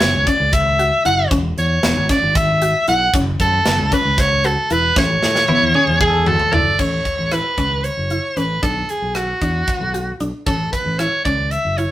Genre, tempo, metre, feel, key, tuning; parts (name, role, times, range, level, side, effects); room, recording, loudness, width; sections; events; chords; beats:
progressive instrumental, band music in an uneven meter; 230 BPM (eighths); 7/8; straight; A major; A4 = 440 Hz
edgy soprano saxophone; melody; 0.0-11.9 s; F#4 to F#5; -17 LUFS; equal
mallet-like synth pluck; arpeggios; 0.0-11.9 s; B3 to F#4; -24 LUFS; left 1 dB; chorus
fingered electric bass; bass; 0.0-11.8 s; E1 to A2; -22 LUFS; equal
tight metal drum kit; drums; 0.0-11.9 s; crash cymbal, hi-hat, kick drum, rim click, snare drum, toms; -22 LUFS; equal
direct-recorded clean electric guitar; second line; 5.5-6.8 s; E4 to A4; -25 LUFS; left 1 dB; spring reverb
moderate studio reverb, RT60 0.6 s; rough rehearsal-room recording; -15 LUFS; side -14 dB against mid
0.0-6.8 A section; 6.8-11.9 B section
drum fill 5.0-6.8
0.0 F#5; 1.3 C#m7/E; 3.1 F#m; 5.0 A; 8.6 Bm; 10.5 A
0.01 0.27 0.53 0.79 1.05 | 1.31 1.58 1.84 2.10 2.36 2.62 2.88 | 3.14 3.40 3.66 3.92 4.18 4.44 4.70 | 4.96 5.23 5.49 5.75 6.01 6.27 6.53 | 6.79 7.06 7.32 7.58 7.84 8.11 8.37 | 8.63 8.89 9.15 9.42 9.68 9.94 10.21 | 10.47 10.73 10.99 11.26 11.52 11.78